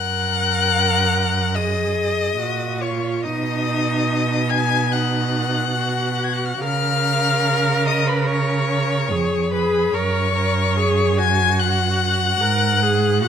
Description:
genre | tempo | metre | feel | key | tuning
classical, slow romantic movement for string quartet | 72 BPM | 4/4 | rubato | F# major | A4 = 442 Hz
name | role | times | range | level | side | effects
rich violin | melody | 0.0-13.3 s | B5 to G#6 | -23 LUFS | left 10 dB | none
rich violin | second line | 0.0-13.3 s | B4 to G#5 | -25 LUFS | left 3 dB | none
warm viola | accompaniment | 0.0-13.3 s | D#4 to A#4 | -24 LUFS | right 1 dB | none
rich cello | bass | 0.0-13.3 s | E#2 to C#3 | -22 LUFS | right 4 dB | none
room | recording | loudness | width
moderate recital hall reverb, RT60 1.5 s | none | -17 LUFS | side -8 dB against mid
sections
0.0-13.3 A section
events
none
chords
0.0 F#; 3.2 B; 6.6 C#; 9.9 F#

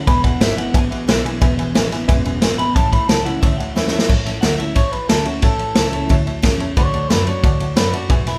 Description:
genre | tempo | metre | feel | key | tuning
rockabilly | 180 BPM | 4/4 | straight | A major | A4 = 440 Hz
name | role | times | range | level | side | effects
electric guitar through a small old amp | melody | 0.0-8.4 s | E4 to B5 | -26 LUFS | equal | none
picked steel-string acoustic guitar | accompaniment | 0.0-8.4 s | E2 to F#4 | -30 LUFS | equal | none
electric guitar through a small old amp | riff | 0.0-4.1 s | E2 to F#3 | -28 LUFS | equal | spring reverb
dark double bass | bass | 0.0-8.4 s | E1 to F#2 | -25 LUFS | equal | none
tack piano | accompaniment | 0.1-8.4 s | B4 to B5 | -31 LUFS | equal | none
vintage drum kit | drums | 0.1-8.3 s | crash cymbal, kick drum, ride cymbal, snare drum | -19 LUFS | equal | none
room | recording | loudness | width
light reverb | band playing live in one room | -17 LUFS | mono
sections
0.0-4.1 A section; 4.1-8.4 B section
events
drum fill 3.8-4.1; clean electric guitar solo 4.1-8.4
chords
0.1 E7; 2.8 A; 6.8 D

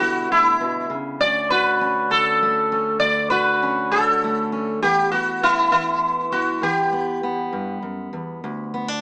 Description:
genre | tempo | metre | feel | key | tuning
acoustic folk duo or small band | 66 BPM (dotted quarters) | 6/8 | straight | D major | A4 = 440 Hz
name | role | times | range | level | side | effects
sitar | melody | 0.0-7.8 s | E4 to D5 | -18 LUFS | equal | none
fingerpicked steel-string acoustic guitar | accompaniment | 0.0-9.0 s | D2 to F#4 | -25 LUFS | equal | none
room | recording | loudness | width
light reverb | small speaker sound | -17 LUFS | side -35 dB against mid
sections
0.0-8.4 A section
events
none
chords
0.0 G6; 1.2 Dmaj7; 4.8 Em; 8.4 D5

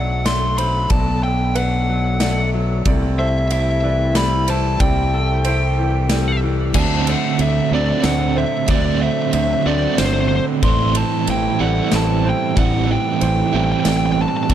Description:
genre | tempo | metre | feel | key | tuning
post-rock | 93 BPM | 3/4 | straight | A dorian | A4 = 440 Hz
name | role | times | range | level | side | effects
biting lead guitar | melody | 0.0-14.5 s | C5 to C6 | -22 LUFS | left 1 dB | overdrive, tape echo
hand-pumped harmonium | sustained chords | 0.0-14.5 s | B2 to C5 | -30 LUFS | left 2 dB | none
electric guitar through a small old amp | arpeggios | 0.0-14.5 s | A2 to A4 | -25 LUFS | left 3 dB | tape echo
felt-muted upright piano | arpeggios | 0.0-14.5 s | B4 to D5 | -32 LUFS | right 5 dB | tape echo
growling fingered electric bass | bass | 0.0-14.5 s | G1 to D2 | -20 LUFS | equal | overdrive
big rock drum kit | drums | 0.3-14.5 s | crash cymbal, kick drum, ride cymbal, snare drum | -24 LUFS | equal | none
overdriven semi-hollow guitar | riff | 6.7-14.5 s | A2 to F#4 | -20 LUFS | right 9 dB | tremolo
room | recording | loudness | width
small room ambience | dark, warm production | -15 LUFS | side -10 dB against mid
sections
0.0-6.8 A section; 6.8-14.5 B section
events
none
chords
0.0 Bm7; 2.9 Am7/C; 6.8 D7; 10.6 Am7

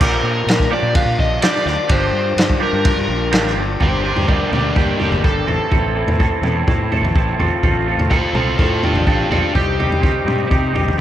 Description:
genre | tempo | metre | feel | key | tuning
indie rock | 125 BPM | 4/4 | straight | G minor | A4 = 441 Hz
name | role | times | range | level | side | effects
overdriven semi-hollow guitar | melody | 0.0-10.9 s | Bb3 to F5 | -21 LUFS | left 1 dB | slapback echo
electric guitar through a small old amp | riff | 0.0-11.0 s | G2 to A4 | -24 LUFS | left 5 dB | slapback echo
twangy electric guitar | riff | 0.0-11.0 s | G2 to A4 | -23 LUFS | right 7 dB | ensemble chorus, slapback echo
fuzz fingered electric bass | bass | 0.0-11.0 s | G1 to C3 | -22 LUFS | equal | overdrive
unplugged drum kit | drums | 0.0-11.0 s | crash cymbal, kick drum, ride cymbal, snare drum, toms | -18 LUFS | equal | none
room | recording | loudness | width
moderate lush hall reverb, RT60 2.1 s | big arena sound | -14 LUFS | side -11 dB against mid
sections
0.0-3.8 A section; 3.8-11.0 B section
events
overdriven electric guitar solo 3.8-11.0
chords
0.0 Bb6; 1.9 Gm7; 3.8 Gm; 5.5 Am; 7.4 F/A; 9.5 Cm

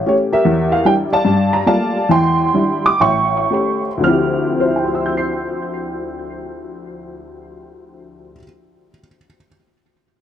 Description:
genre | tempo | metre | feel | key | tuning
solo jazz | 107-153 BPM | 4/4 | swing 67% on 8ths | D minor | A4 = 439 Hz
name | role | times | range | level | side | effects
honky-tonk upright piano | solo | 0.1-9.5 s | A1 to C7 | -15 LUFS | equal | analog delay
room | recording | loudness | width
wet studio reverb, RT60 0.6 s | none | -14 LUFS | side -10 dB against mid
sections
0.0-4.0 A section; 4.0-8.5 B section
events
slowing down 0.4-4.0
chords
0.4 Em7b5; 1.2 Gm9; 2.1 Cadd9/E; 3.0 A7; 4.0 Dm11

